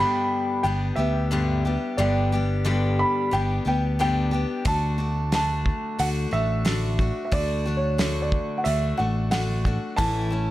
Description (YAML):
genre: folk rock and heartland rock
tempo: 90 BPM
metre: 4/4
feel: straight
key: D major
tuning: A4 = 440 Hz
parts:
  - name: dark baby grand piano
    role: melody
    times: 0.0-10.5 s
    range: C#5 to B5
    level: -27 LUFS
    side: right 1 dB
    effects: none
  - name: picked steel-string acoustic guitar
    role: accompaniment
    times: 0.0-10.5 s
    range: G2 to G4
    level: -27 LUFS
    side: left 3 dB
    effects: none
  - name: fingered electric bass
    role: bass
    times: 0.0-10.5 s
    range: G1 to D2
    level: -25 LUFS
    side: equal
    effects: none
  - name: damped 70s drum kit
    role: drums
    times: 4.7-10.1 s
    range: hi-hat, kick drum, snare drum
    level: -26 LUFS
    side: equal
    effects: none
room: light reverb, studio reverb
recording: dark, warm production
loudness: -21 LUFS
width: side -15 dB against mid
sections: 0.0-10.5 A section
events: none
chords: 0.0 G; 4.7 D; 10.0 A